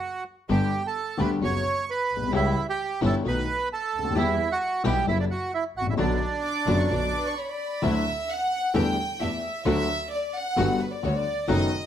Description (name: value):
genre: tango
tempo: 131 BPM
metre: 4/4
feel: rubato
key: B minor, D major from 7.8 s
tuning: A4 = 441 Hz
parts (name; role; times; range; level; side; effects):
- bandoneon; melody; 0.0-7.3 s; D4 to C#6; -27 LUFS; right 4 dB; none
- warm concert grand piano; accompaniment; 0.5-11.7 s; F#1 to G4; -26 LUFS; left 4 dB; none
- rich studio string section; stabs; 0.5-11.7 s; F#3 to G4; -34 LUFS; equal; none
- clear double bass; bass; 0.5-11.7 s; F#1 to E2; -29 LUFS; right 2 dB; none
- warm symphonic violin section; second line; 6.4-11.9 s; B4 to D6; -28 LUFS; equal; none
room: moderate studio reverb, RT60 0.8 s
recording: none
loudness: -23 LUFS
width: side -10 dB against mid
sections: 0.0-7.8 A section; 7.8-11.9 B section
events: violin section solo 7.8-11.9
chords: 0.5 G; 1.4 F#sus4; 2.3 C#dim; 3.2 B7; 4.2 Em; 5.1 F#7; 6.0 Bm; 7.8 Dadd9; 8.8 A7sus4/E; 9.7 D; 10.6 Gmaj7